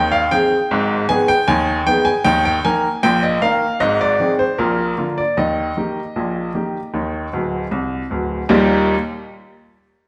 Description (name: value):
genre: ragtime piano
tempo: 77 BPM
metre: 2/4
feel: straight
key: Eb major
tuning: A4 = 440 Hz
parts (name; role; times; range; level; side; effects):
- bright upright piano; solo; 0.0-8.9 s; D1 to Ab5; -18 LUFS; equal; none
room: wet stone room reverb, RT60 1.3 s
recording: band playing live in one room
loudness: -18 LUFS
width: mono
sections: 0.0-8.5 A section; 8.5-10.1 B section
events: upright piano fill 7.3-8.5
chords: 0.0 Ab; 0.7 Abm; 2.3 Eb5; 3.8 Ab; 4.6 Bb; 5.4 Eb